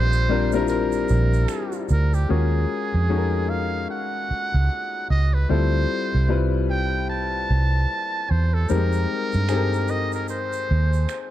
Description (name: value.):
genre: R&B, neo-soul.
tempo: 75 BPM.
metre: 4/4.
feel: swing 59% on 16ths.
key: unclear.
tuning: A4 = 440 Hz.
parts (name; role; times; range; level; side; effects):
trumpet with metal mute; melody; 0.0-11.2 s; G4 to A5; -27 LUFS; right 2 dB; slapback echo.
bright baby grand piano; accompaniment; 0.0-11.3 s; G3 to B4; -26 LUFS; left 6 dB; none.
vintage muted fingered electric bass; bass; 0.0-11.1 s; Bb1 to G2; -21 LUFS; right 1 dB; none.
egg shaker and finger snaps; percussion; 0.1-2.3, 8.7-11.3 s; none; -40 LUFS; right 15 dB; none.
room: light reverb, studio ambience.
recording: dark, warm production.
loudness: -20 LUFS.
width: side -13 dB against mid.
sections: 0.0-2.3 A section; 2.3-11.3 B section.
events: none.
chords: 0.0 C9sus4; 2.3 Ebm11; 5.5 Dm11 (rootless); 8.7 Fm11.